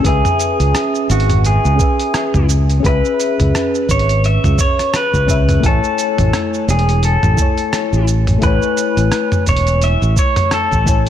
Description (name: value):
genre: sunset chillout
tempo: 86 BPM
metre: 4/4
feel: swing 57% on 16ths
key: A major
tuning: A4 = 437 Hz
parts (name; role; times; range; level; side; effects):
- pedal steel guitar; melody; 0.0-11.1 s; F#4 to E5; -18 LUFS; left 1 dB; ping-pong delay
- mellow FM electric piano; accompaniment; 0.0-11.1 s; A3 to G#5; -20 LUFS; moving between left 9 dB and right 4 dB; chorus, auto-pan, ping-pong delay
- fingered electric bass; bass; 0.0-11.1 s; E1 to C#2; -14 LUFS; equal; none
- dusty soul sampler-style drum kit; drums; 0.0-11.1 s; cabasa, hi-hat, rim click, toms; -20 LUFS; right 1 dB; none
- electronic kick drum; drums; 0.0-11.0 s; none; -17 LUFS; equal; none
room: light reverb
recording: dark, warm production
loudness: -12 LUFS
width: side -10 dB against mid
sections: 0.0-11.1 A section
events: none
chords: 0.1 C#m7; 5.6 Amaj7